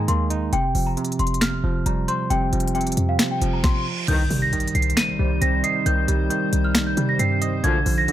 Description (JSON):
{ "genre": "hip hop, trap", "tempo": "135 BPM", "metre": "4/4", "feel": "half-time", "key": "C minor", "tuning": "A4 = 440 Hz", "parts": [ { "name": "celesta", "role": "melody", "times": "0.0-8.1 s", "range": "F5 to Eb7", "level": "-25 LUFS", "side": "left 1 dB", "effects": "tape echo" }, { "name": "bell-like tine electric piano", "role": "accompaniment", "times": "0.0-8.1 s", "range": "C3 to Eb5", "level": "-25 LUFS", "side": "right 4 dB", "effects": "none" }, { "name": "short 808-style bass", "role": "bass", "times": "0.0-8.1 s", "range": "F1 to C3", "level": "-23 LUFS", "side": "equal", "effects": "none" }, { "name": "trap drum kit", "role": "drums", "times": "0.1-8.1 s", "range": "crash cymbal, finger snaps, hi-hat, kick drum, snare drum", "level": "-24 LUFS", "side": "equal", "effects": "overdrive" }, { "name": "reverse cymbal and impact", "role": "sound effects", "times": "3.4-5.9 s", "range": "none", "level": "-32 LUFS", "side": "equal", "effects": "none" }, { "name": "glassy FM pad", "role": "sustained chords", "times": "4.7-8.1 s", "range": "C3 to F5", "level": "-29 LUFS", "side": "left 2 dB", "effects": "ensemble chorus, built-in reverb" }, { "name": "warm brass ensemble", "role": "stabs", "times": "4.1-4.2, 7.6-7.8 s", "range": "C2 to F3", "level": "-29 LUFS", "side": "left 4 dB", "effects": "none" } ], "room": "digital ambience", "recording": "none", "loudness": "-19 LUFS", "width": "side -12 dB against mid", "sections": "0.0-4.1 A section; 4.1-8.1 B section", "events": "reverse cymbal 3.4-4.1; impact 4.1-5.9", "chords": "0.0 Absus2; 0.5 Fsus2; 4.1 Cm" }